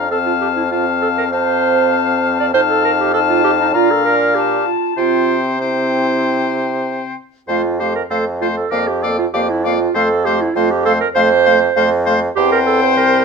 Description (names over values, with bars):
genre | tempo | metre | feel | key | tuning
quick classical-period movement for wind quintet | 98 BPM | 4/4 | rubato | F major | A4 = 440 Hz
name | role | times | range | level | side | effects
silver concert flute | melody | 0.0-13.2 s | F5 to Bb5 | -21 LUFS | left 9 dB | none
bright oboe | second line | 0.0-13.2 s | C5 to F5 | -20 LUFS | left 6 dB | none
dark French horn | accompaniment | 0.0-13.2 s | A3 to Eb4 | -23 LUFS | left 2 dB | none
warm bassoon | bass | 0.0-13.2 s | C2 to C3 | -20 LUFS | right 2 dB | none
warm clarinet | accompaniment | 0.1-13.2 s | Eb4 to D5 | -17 LUFS | right 6 dB | none
room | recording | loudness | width
light reverb | minimal, uncompressed stereo recording | -13 LUFS | side -5 dB against mid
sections
0.0-13.2 A section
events
none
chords
0.1 F; 2.5 F7; 3.7 Bb; 5.0 C; 7.5 F; 8.7 Bb/F; 10.0 F; 12.4 C/E